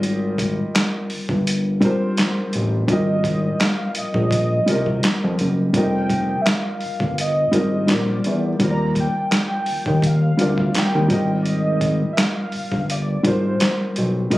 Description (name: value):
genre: R&B, neo-soul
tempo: 84 BPM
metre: 4/4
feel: swing 54% on 16ths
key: unclear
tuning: A4 = 440 Hz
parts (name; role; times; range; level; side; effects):
- dark upright piano; accompaniment; 0.0-14.4 s; G3 to Eb5; -23 LUFS; left 1 dB; none
- fat analog bass; bass; 0.0-14.4 s; F1 to F2; -20 LUFS; equal; none
- boom bap sampler-style drum kit; drums; 0.0-14.4 s; handclaps, hi-hat, kick drum, snare drum; -22 LUFS; equal; none
- warm velvety synth lead; melody; 2.9-14.4 s; C5 to Bb5; -25 LUFS; right 1 dB; chorus, phaser
room: light reverb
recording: recorded on a phone in the room, studio reverb, compression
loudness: -17 LUFS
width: side -17 dB against mid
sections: 0.0-14.4 A section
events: none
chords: 0.0 Abmaj7; 5.7 Fm9; 7.9 Bb; 8.6 Ebmaj7; 11.1 Abmaj7